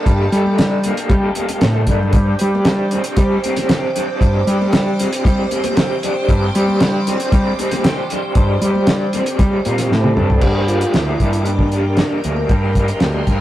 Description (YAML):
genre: psychedelic rock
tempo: 116 BPM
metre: 4/4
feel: straight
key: G minor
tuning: A4 = 442 Hz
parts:
  - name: phased string machine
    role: sustained chords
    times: 0.0-13.4 s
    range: Bb4 to D6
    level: -25 LUFS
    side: right 2 dB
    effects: ensemble chorus, phaser
  - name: raw garage guitar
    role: riff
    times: 0.0-13.4 s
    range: G2 to A4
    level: -21 LUFS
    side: equal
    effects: overdrive, tremolo
  - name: growling picked electric bass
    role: bass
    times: 0.1-13.4 s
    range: D2 to G3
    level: -17 LUFS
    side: equal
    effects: overdrive
  - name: cloth-damped thuddy drum kit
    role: drums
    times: 0.1-13.4 s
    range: crash cymbal, hi-hat, kick drum, snare drum, toms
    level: -17 LUFS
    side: equal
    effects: none
  - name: congas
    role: percussion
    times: 0.5-13.4 s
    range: none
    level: -30 LUFS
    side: left 6 dB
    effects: none
  - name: overdriven combo organ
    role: melody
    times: 10.2-12.2 s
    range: D4 to A4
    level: -22 LUFS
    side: equal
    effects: none
room: light reverb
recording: rough rehearsal-room recording, warm saturation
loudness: -14 LUFS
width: side -14 dB against mid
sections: 0.0-10.4 A section; 10.4-13.4 B section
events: drum fill 1.6-2.1, 9.9-10.4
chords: 0.0 Gmadd9; 2.1 Csus2/G; 10.4 Gm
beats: | 0.06 0.58 1.10 1.62 | 2.13 2.65 3.17 3.69 | 4.21 4.73 5.25 5.76 | 6.28 6.80 7.32 7.84 | 8.36 8.87 9.39 9.91 | 10.43 10.95 11.46 11.98 | 12.50 13.02